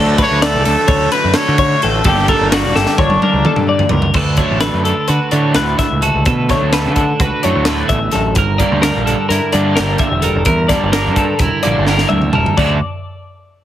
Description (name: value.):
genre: math rock and midwest emo.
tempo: 257 BPM (eighths).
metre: 9/8.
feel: straight.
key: D major.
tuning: A4 = 439 Hz.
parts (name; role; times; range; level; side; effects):
twelve-string electric guitar; arpeggios; 0.0-12.8 s; A4 to E5; -18 LUFS; left 5 dB; spring reverb.
crunchy overdriven guitar; riff; 0.0-12.8 s; G2 to D4; -20 LUFS; right 2 dB; none.
growling picked electric bass; bass; 0.0-12.8 s; E1 to D3; -17 LUFS; equal; overdrive.
warm trumpet; melody; 0.2-3.6 s; D4 to C#5; -17 LUFS; right 1 dB; slapback echo.
crisp fusion drum kit; drums; 0.2-12.7 s; crash cymbal, hi-hat, kick drum, ride cymbal, snare drum, toms; -18 LUFS; equal; none.
twelve-string electric guitar; accompaniment; 4.2-12.8 s; D2 to Bb4; -19 LUFS; right 6 dB; none.
room: light reverb.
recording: heavily compressed radio sound.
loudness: -12 LUFS.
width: side -12 dB against mid.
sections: 0.0-4.2 A section; 4.2-12.6 B section; 12.6-13.6 C section.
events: drum fill 2.8-4.2, 11.9-12.6.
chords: 0.0 Dmaj7; 2.1 Gmadd9; 4.2 Dmaj9; 8.4 Gm6; 12.6 Dmaj7.